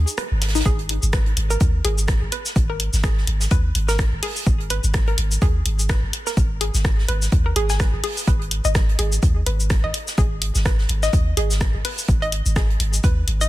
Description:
minimal techno; 126 BPM; 4/4; swing 57% on 16ths; G# minor; A4 = 440 Hz
punchy sub bass; bass; 0.0-13.5 s; G#1 to D#2; -22 LUFS; equal; sidechain pumping
punchy analog drum machine; drums; 0.1-13.5 s; cabasa, hi-hat, rim click; -27 LUFS; left 1 dB; soft clipping on snare
hollow square pluck; riff; 0.2-13.5 s; D#4 to G#5; -28 LUFS; left 1 dB; chorus, sidechain pumping, digital delay
warm soul drum kit; drums; 0.2-13.4 s; hi-hat, snare drum; -33 LUFS; right 4 dB; sidechain pumping on hats, high-pass filter on hats, high-pass filter on snare, high-pass filter on room
electronic kick drum; drums; 0.7-13.1 s; -20 LUFS; equal
little or no reverb; dense, heavily limited modern master; -18 LUFS; side -16 dB against mid
0.0-13.5 A section
break 0.0-0.7
0.0 G#m

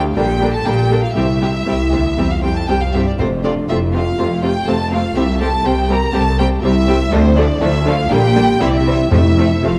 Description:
quick classical-period movement for symphony orchestra; 121 BPM; 4/4; straight; A4 = 440 Hz
mellow French horn section; sustained chords; 0.0-9.8 s; C4 to Bb4; -23 LUFS; equal
clear studio double bass section; bass; 0.0-9.8 s; F1 to D2; -22 LUFS; equal
rich symphonic cello section; bass; 0.0-9.8 s; C2 to C3; -22 LUFS; equal
rich chamber violin section; melody; 0.2-9.8 s; C5 to Bb5; -24 LUFS; equal
rich chamber violin section; second line; 0.2-9.7 s; G3 to G4; -25 LUFS; equal
clear studio viola section; accompaniment; 0.2-9.7 s; C3 to A3; -24 LUFS; equal
timpani; percussion; 1.2-3.9, 9.1-9.8 s; F2 to C3; -23 LUFS; equal
wet concert hall reverb, RT60 2.1 s; dark, warm production; -15 LUFS; mono
0.0-9.8 A section
0.2 Gm/Bb; 1.2 C; 3.2 F; 5.2 C; 7.1 Dm; 8.1 Gm/Bb; 8.6 C; 9.1 F

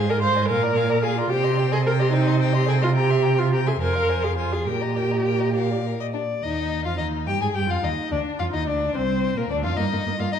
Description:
quick classical-period movement for string quartet; 67-75 BPM (dotted quarters); 6/8; rubato; Eb major; A4 = 441 Hz
rich violin; melody; 0.0-10.4 s; Bb3 to C6; -31 LUFS; left 12 dB
warm violin; second line; 0.0-10.4 s; Bb4 to Ab5; -29 LUFS; left 6 dB
rich viola; accompaniment; 0.0-10.3 s; Bb3 to C5; -24 LUFS; right 1 dB
rich cello; bass; 0.0-10.2 s; C2 to C3; -24 LUFS; right 3 dB
wet recital hall reverb, RT60 1.4 s; dark, warm production; -20 LUFS; side -8 dB against mid
0.0-6.4 A section; 6.4-10.4 B section
0.5 Bb7; 1.3 Cm; 3.0 C7; 3.8 Fm; 4.7 Eb/Bb; 6.4 Eb; 8.1 Bb/D (rootless); 9.8 Ebadd9/G

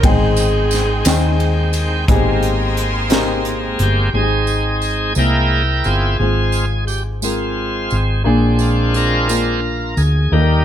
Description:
slow gospel; 58 BPM (dotted quarters); 6/8; straight; Ab major; A4 = 439 Hz
dark saxophone section; melody; 0.0-1.8 s; C4 to Ab4; -21 LUFS; right 1 dB
dark upright piano; accompaniment; 0.0-10.6 s; Ab2 to G5; -21 LUFS; left 3 dB
bright tonewheel organ; sustained chords; 0.0-10.6 s; Eb3 to G5; -20 LUFS; right 1 dB; fast rotary speaker, overdrive
hollow-body short-scale fingered electric bass; bass; 0.0-10.6 s; G1 to Eb2; -18 LUFS; equal
crisp fusion drum kit; drums; 0.0-4.0 s; hi-hat, kick drum, ride cymbal, snare drum; -19 LUFS; equal
tambourine; percussion; 0.4-10.3 s; -27 LUFS; right 7 dB
clear studio string section; sustained chords; 2.1-4.1 s; Eb5 to C6; -28 LUFS; left 3 dB
little or no reverb; -14 LUFS; side -10 dB against mid
0.0-2.1 A section; 2.1-4.1 B section; 4.1-10.6 C section
tonewheel organ solo 2.1-4.1, 4.1-10.6
0.0 Abmaj7; 4.1 Ab; 5.2 C7b13; 6.2 Fm/Ab; 8.3 Bb7

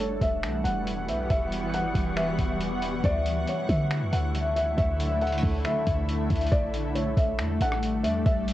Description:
hip hop, atmospheric cloud-rap; 138 BPM; 4/4; half-time; A4 = 440 Hz
felt-muted upright piano; melody; 0.0-8.5 s; C#5 to F#5; -31 LUFS; equal; low-pass filter, cassette tape, analog delay, plate reverb
granular cloud pad; sustained chords; 0.0-8.5 s; D3 to F#5; -30 LUFS; equal; built-in reverb, sidechain pumping, cassette tape
concert harp; arpeggios; 0.0-8.5 s; G3 to C#6; -35 LUFS; left 3 dB
clean 808-style bass; bass; 0.0-8.5 s; E1 to D3; -29 LUFS; equal
lo-fi sampler-style drum kit; drums; 0.0-8.5 s; finger snaps, hi-hat, kick drum, rim click; -30 LUFS; equal; overdrive, cassette tape
wind-like tuned noise texture; texture; 0.6-6.5 s; F#3 to C#6; -41 LUFS; equal; built-in reverb, cassette tape
light reverb; home recording on cassette; -24 LUFS; side -14 dB against mid
0.0-6.5 A section; 6.5-8.5 B section
0.0 Em69; 3.0 Dmaj9; 6.5 A7sus4

